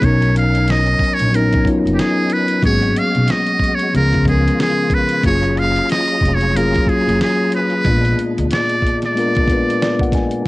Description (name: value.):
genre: R&B, neo-soul.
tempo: 92 BPM.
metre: 4/4.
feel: swing 58% on 16ths.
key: unclear.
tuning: A4 = 439 Hz.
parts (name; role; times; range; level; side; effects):
trumpet with metal mute; melody; 0.0-10.1 s; G4 to F5; -19 LUFS; right 1 dB; none.
mellow tine electric piano; accompaniment; 0.0-10.5 s; F3 to Ab5; -18 LUFS; left 2 dB; none.
percussive tonewheel organ; sustained chords; 0.0-10.4 s; Bb2 to Bb5; -27 LUFS; right 1 dB; slow rotary speaker, overdrive, chorus vibrato.
upright bass; bass; 0.0-8.5 s; F1 to D2; -18 LUFS; equal; none.
dusty soul sampler-style drum kit; drums; 0.0-10.5 s; hi-hat, kick drum, snare drum; -20 LUFS; equal; cassette tape.
room: light reverb.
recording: home recording on cassette.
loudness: -13 LUFS.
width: side -19 dB against mid.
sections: 0.0-10.5 A section.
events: tine electric piano fill 9.5-10.5.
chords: 0.0 Bmaj9; 2.6 Abm11; 3.9 Db7; 5.2 Gbmaj9; 7.8 Bb7b9.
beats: | 0.02 0.67 1.32 1.98 | 2.63 3.28 3.93 4.59 | 5.24 5.89 6.54 7.20 | 7.85 8.50 9.15 9.80 | 10.46.